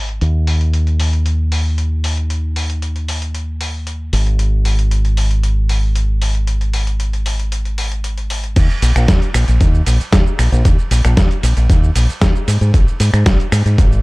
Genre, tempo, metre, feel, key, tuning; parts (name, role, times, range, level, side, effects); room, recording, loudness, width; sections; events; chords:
nu-disco, nu disco; 115 BPM; 4/4; straight; A4 = 440 Hz
fingered electric bass with an envelope filter; bass; 0.0-14.0 s; Ab1 to Ab2; -14 LUFS; equal
dusty soul sampler-style drum kit; drums; 0.1-14.0 s; crash cymbal, finger snaps, hi-hat, ride cymbal, shaker, snare drum; -22 LUFS; equal; overdrive, low-pass filter on hats, low-pass filter on cymbals, low-pass filter on perc, low-pass filter on snare, low-pass filter on room, dub echo
electronic kick drum; drums; 8.6-13.9 s; -13 LUFS; equal; overdrive
little or no reverb; echo-heavy mix; -13 LUFS; side -24 dB against mid
0.0-8.6 A section; 8.6-14.0 B section
drop 8.6-14.0